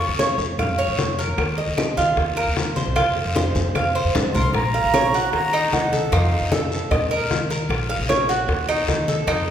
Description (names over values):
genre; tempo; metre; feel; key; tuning
latin, Cuban son and guajira; 152 BPM; 4/4; straight; Bb harmonic minor from 4.5 s; A4 = 439 Hz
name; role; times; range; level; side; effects
breathy concert flute; melody; 0.0-0.3, 4.3-6.5 s; F5 to Db6; -23 LUFS; right 1 dB; none
Cuban tres; arpeggios; 0.0-9.5 s; Eb4 to F5; -22 LUFS; right 1 dB; none
upright bass; bass; 0.0-9.5 s; Bb1 to F2; -25 LUFS; equal; none
bongos; percussion; 0.0-9.5 s; none; -28 LUFS; left 4 dB; none
congas; percussion; 0.0-9.5 s; none; -27 LUFS; equal; none
guiro; percussion; 0.2-9.5 s; none; -32 LUFS; left 3 dB; none
claves; percussion; 0.6-9.5 s; none; -34 LUFS; right 3 dB; none
room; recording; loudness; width
wet recital hall reverb, RT60 1.6 s; recorded in a church or concert hall; -18 LUFS; side -9 dB against mid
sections
0.0-4.5 A section; 4.5-9.5 B section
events
drum fill 3.6-4.5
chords
0.0 Db/F; 1.4 Ebsus2; 4.5 Bbm; 5.3 Ebm; 6.1 F7; 6.9 Eb5; 7.7 Bbm; 8.5 Ebm